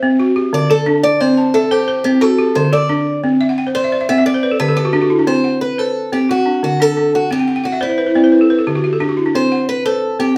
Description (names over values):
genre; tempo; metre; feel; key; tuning
west african traditional, West African string and xylophone music; 118 BPM (dotted quarters); 12/8; straight; unclear; A4 = 441 Hz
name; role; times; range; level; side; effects
balafon; arpeggios; 0.0-10.4 s; D3 to A5; -17 LUFS; equal; none
picked old ladder-braced acoustic guitar; melody; 0.5-10.4 s; E4 to E5; -18 LUFS; equal; none
room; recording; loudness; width
wet studio ambience, RT60 0.5 s; heard from further back in the room; -15 LUFS; mono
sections
0.0-5.3 A section; 5.3-10.4 B section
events
steel-string acoustic guitar solo 0.0-5.3; balafon fill 3.4-5.3, 7.3-9.3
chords
0.2 D; 1.2 C; 2.2 D; 3.2 N.C.; 5.3 Am6/C; 6.3 D; 7.3 N.C.; 9.3 Am6/C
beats
0.20 0.71 | 1.21 1.72 2.23 2.73 | 3.24 3.75 4.26 4.76 | 5.27 5.78 6.29 6.80 | 7.31 7.82 8.33 8.84 | 9.35 9.86